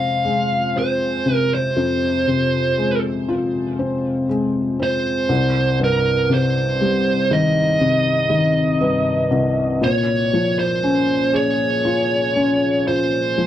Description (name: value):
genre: pop ballad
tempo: 59 BPM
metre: 4/4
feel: straight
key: F minor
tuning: A4 = 442 Hz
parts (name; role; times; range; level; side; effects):
- fuzz lead guitar; melody; 0.0-13.5 s; Bb4 to F5; -20 LUFS; right 2 dB; distortion
- felt-muted upright piano; accompaniment; 0.0-13.5 s; C2 to Ab4; -19 LUFS; left 2 dB; none
room: moderate booth ambience, RT60 0.2 s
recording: dry, close 1970s-style studio recording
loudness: -16 LUFS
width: side -11 dB against mid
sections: 0.0-13.5 A section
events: none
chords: 0.0 Fm; 5.3 Cm; 9.8 Bbm7